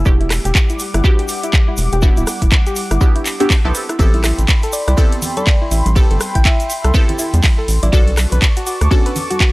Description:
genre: deep house.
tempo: 122 BPM.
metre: 4/4.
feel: swing 60% on 16ths.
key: unclear.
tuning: A4 = 440 Hz.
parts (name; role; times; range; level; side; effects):
filtered dub chord stab; stabs; 0.0-9.5 s; B3 to A4; -21 LUFS; right 1 dB; phaser, analog chorus, sidechain pumping, tape echo.
rubbery square bass; bass; 0.0-8.9 s; D1 to E2; -15 LUFS; equal; sidechain pumping.
warbly tape-like pad; sustained chords; 0.1-9.5 s; G3 to D6; -27 LUFS; equal; chorus, built-in reverb, tremolo, sidechain pumping.
electronic kick drum; drums; 0.1-9.5 s; none; -13 LUFS; equal; none.
egg shaker; percussion; 0.1-9.5 s; none; -28 LUFS; right 1 dB; none.
soft round pluck; arpeggios; 0.2-9.5 s; E4 to B4; -25 LUFS; left 1 dB; chorus, sidechain pumping, tape echo.
house drum kit; drums; 0.2-9.5 s; handclaps, hi-hat, ride cymbal, rim click; -21 LUFS; equal; none.
congas; percussion; 4.1-9.4 s; none; -28 LUFS; right 1 dB; none.
thumb-piano-like synth pluck; melody; 4.7-8.0 s; D5 to G5; -26 LUFS; left 1 dB; chorus, vintage 12-bit sampler grit, tape echo.
room: digital ambience.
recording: dry, gritty hardware recording, transformer saturation, cassette tape.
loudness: -12 LUFS.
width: side -20 dB against mid.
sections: 0.0-9.5 A section.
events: none.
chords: 0.1 Em9; 3.7 Am9; 7.9 Bm9.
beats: | 0.06 0.55 1.04 1.53 | 2.03 2.52 3.01 3.50 | 3.99 4.49 4.98 5.47 | 5.96 6.45 6.94 7.44 | 7.93 8.42 8.91 9.40.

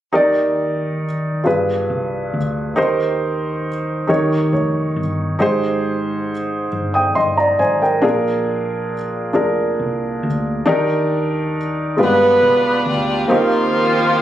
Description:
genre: slow gospel.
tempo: 46 BPM (dotted quarters).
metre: 6/8.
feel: straight.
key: Eb major.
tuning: A4 = 440 Hz.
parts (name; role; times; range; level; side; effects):
warm upright piano; accompaniment; 0.1-14.2 s; G2 to Eb6; -17 LUFS; equal; none.
hollow-body short-scale fingered electric bass; bass; 0.1-14.2 s; F1 to Eb2; -27 LUFS; equal; none.
warm horn section; melody; 12.0-14.2 s; F3 to B4; -14 LUFS; equal; none.
room: moderate large studio reverb, RT60 0.9 s, small room ambience.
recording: recorded on a phone in the room, club reverb.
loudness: -16 LUFS.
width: side -12 dB against mid.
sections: 0.1-10.7 A section; 10.7-14.2 B section.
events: upright piano fill 4.1-5.4.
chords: 0.1 Ebmaj7; 1.5 G7b9; 2.8 Cm7/Eb; 4.1 Eb7; 5.4 Abmaj7; 8.0 Bb7; 10.7 Ebmaj7; 12.0 G7b9; 13.3 Cm7/Eb.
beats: | 0.14 1.46 | 2.77 4.09 | 5.41 6.72 | 8.04 9.35 | 10.67 11.98 | 13.29.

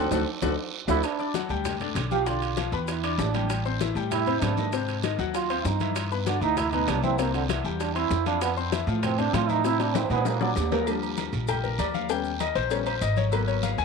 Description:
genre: Afro-Cuban jazz.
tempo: 195 BPM.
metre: 4/4.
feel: straight.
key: G major.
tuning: A4 = 440 Hz.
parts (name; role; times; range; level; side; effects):
clear trombone; second line; 0.0-10.5 s; D3 to G4; -29 LUFS; right 10 dB; none.
warm concert grand piano; accompaniment; 0.0-13.8 s; B2 to D6; -29 LUFS; left 13 dB; none.
upright bass; bass; 0.0-13.8 s; Ab1 to Bb2; -29 LUFS; right 1 dB; none.
bongos and cowbell; percussion; 0.1-13.8 s; none; -34 LUFS; left 12 dB; none.
congas; percussion; 0.1-13.8 s; none; -36 LUFS; left 12 dB; none.
guiro; percussion; 0.1-13.8 s; none; -40 LUFS; right 14 dB; none.
maracas; percussion; 0.1-13.8 s; none; -44 LUFS; left 14 dB; none.
timbales and agogo bells; percussion; 0.1-13.8 s; none; -34 LUFS; right 15 dB; none.
room: moderate spring reverb, RT60 2.6 s.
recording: 1960s-style stereo with parts hard left and right.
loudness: -24 LUFS.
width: side -5 dB against mid.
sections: 0.0-1.0 A section; 1.0-10.9 A section; 10.9-13.8 A section.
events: band accent 0.0-1.0; trombone solo 0.0-10.9; drum fill 0.3-1.0, 9.6-10.9; grand piano solo 10.9-13.8.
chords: 0.0 D; 1.0 Gmaj7; 2.3 Bdim; 2.9 E5; 3.5 Am7; 4.7 Ab7; 6.0 G6; 7.2 C; 8.4 Fmaj7; 9.6 Am; 10.3 Ebmaj7(no3); 10.9 Ebmaj9; 12.1 Eb7b13; 13.3 Abm9.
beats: 0.12 0.42 0.73 | 1.04 1.35 1.65 1.96 | 2.27 2.58 2.88 3.19 | 3.50 3.81 4.12 4.42 | 4.73 5.04 5.34 5.65 | 5.96 6.27 6.57 6.88 | 7.19 7.50 7.80 8.11 | 8.42 8.72 9.03 9.34 | 9.64 9.95 10.26 10.56 | 10.87 11.18 11.48 11.79 | 12.10 12.40 12.71 13.02 | 13.32 13.63.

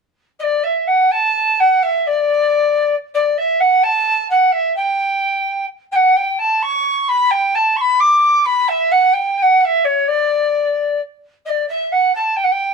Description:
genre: musette.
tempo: 130 BPM.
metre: 3/4.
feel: rubato.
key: D major.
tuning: A4 = 442 Hz.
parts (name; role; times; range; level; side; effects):
breathy alto recorder; solo; 0.4-12.7 s; C#5 to D6; -13 LUFS; equal; none.
room: moderate studio reverb, RT60 0.7 s.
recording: dark, warm production.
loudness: -14 LUFS.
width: side -5 dB against mid.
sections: 0.4-11.5 A section; 11.5-12.7 A section.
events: none.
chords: none.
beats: | 0.40 0.86 1.33 | 1.79 2.25 2.70 | 3.15 3.60 4.05 | 4.51 4.97 5.44 | 5.91 6.38 6.84 | 7.30 7.76 8.21 | 8.67 9.13 9.59 | 10.04 10.51 10.98 | 11.46 11.92 12.39.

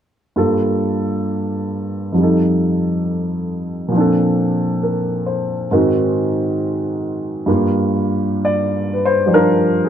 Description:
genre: jazz.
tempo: 67 BPM.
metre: 4/4.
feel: swing 67% on 8ths.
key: G minor.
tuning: A4 = 445 Hz.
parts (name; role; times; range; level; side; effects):
warm baby grand piano; accompaniment; 0.4-9.9 s; F2 to D5; -15 LUFS; equal; none.
room: light reverb.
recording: close, detailed microphones.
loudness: -16 LUFS.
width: side -9 dB against mid.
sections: 0.3-7.5 A section; 7.5-9.9 B section.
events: none.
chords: 0.3 Gm7; 2.1 F7; 3.9 Bbmaj7; 5.7 Ab9; 7.5 Gm7.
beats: | 0.34 1.24 2.13 3.02 | 3.91 4.80 5.69 6.58 | 7.48 8.38 9.27.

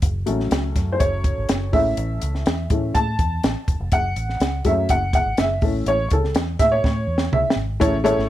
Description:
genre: uptempo 1960s-style soul.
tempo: 123 BPM.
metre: 4/4.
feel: straight.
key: A major.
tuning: A4 = 440 Hz.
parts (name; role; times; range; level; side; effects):
vintage muted fingered electric bass; bass; 0.0-8.3 s; E1 to A2; -25 LUFS; equal; none.
compact cocktail drum kit; drums; 0.0-8.2 s; hi-hat, kick drum, snare drum, toms; -22 LUFS; equal; none.
dark upright piano; accompaniment; 0.3-8.3 s; E3 to A5; -21 LUFS; equal; none.
room: light reverb.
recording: none.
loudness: -18 LUFS.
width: side -13 dB against mid.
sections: 0.0-7.8 A section.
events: upright piano solo 0.0-7.8; drum fill 6.8-7.8.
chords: 0.0 F#m; 1.7 A; 3.9 F#m; 5.6 A.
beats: | 0.03 0.51 1.00 1.49 | 1.98 2.46 2.95 3.44 | 3.92 4.41 4.90 5.38 | 5.87 6.36 6.84 7.33 | 7.82.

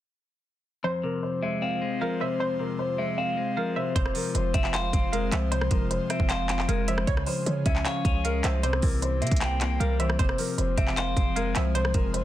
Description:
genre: hip hop, trap.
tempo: 154 BPM.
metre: 4/4.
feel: half-time.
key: F harmonic minor.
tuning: A4 = 440 Hz.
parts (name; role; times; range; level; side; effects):
dark concert grand piano; melody; 0.8-12.2 s; Bb4 to G5; -31 LUFS; equal; ping-pong delay.
hollow square pluck; second line; 0.8-12.2 s; C5 to F5; -36 LUFS; right 5 dB; chorus, ping-pong delay.
clean electric guitar; accompaniment; 0.8-12.2 s; F2 to Db5; -30 LUFS; left 4 dB; none.
airy breathy pad; sustained chords; 0.8-12.2 s; E3 to C5; -37 LUFS; left 1 dB; chorus.
warm 808-style bass; bass; 4.0-12.2 s; F1 to Db3; -28 LUFS; equal; none.
trap drum kit; drums; 4.0-12.2 s; handclaps, hi-hat, kick drum, rim click; -27 LUFS; equal; none.
room: light reverb, digital ambience.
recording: dense, heavily limited modern master.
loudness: -24 LUFS.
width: side -13 dB against mid.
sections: 0.8-4.0 A section; 4.0-12.2 B section.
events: none.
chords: 0.8 Fm; 7.1 Db; 8.6 C7; 10.2 Fm.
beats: | 0.84 1.23 1.62 2.01 | 2.40 2.79 3.18 3.57 | 3.96 4.35 4.74 5.13 | 5.52 5.91 6.29 6.68 | 7.08 7.46 7.85 8.24 | 8.63 9.02 9.41 9.80 | 10.19 10.58 10.97 11.36 | 11.75 12.14.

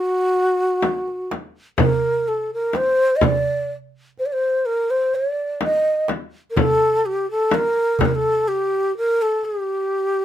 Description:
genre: Arabic maqam ensemble.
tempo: 125 BPM (eighths).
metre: 10/8.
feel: straight.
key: G maqam nahawand.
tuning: A4 = 437 Hz.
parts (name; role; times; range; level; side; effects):
breathy mellow ney; melody; 0.0-10.2 s; F#4 to Eb5; -18 LUFS; equal; none.
darbuka; percussion; 0.4-9.6 s; none; -24 LUFS; right 7 dB; none.
frame drum; percussion; 0.8-8.2 s; none; -21 LUFS; left 4 dB; none.
room: light reverb.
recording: minimal, uncompressed stereo recording.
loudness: -18 LUFS.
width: side -11 dB against mid.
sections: 0.0-10.2 A section.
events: none.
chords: none.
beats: 0.35 0.83 1.31 | 1.79 2.27 2.75 3.22 3.70 4.18 4.66 5.14 5.62 6.09 | 6.57 7.05 7.53 8.01 8.49 8.96 9.44 9.92.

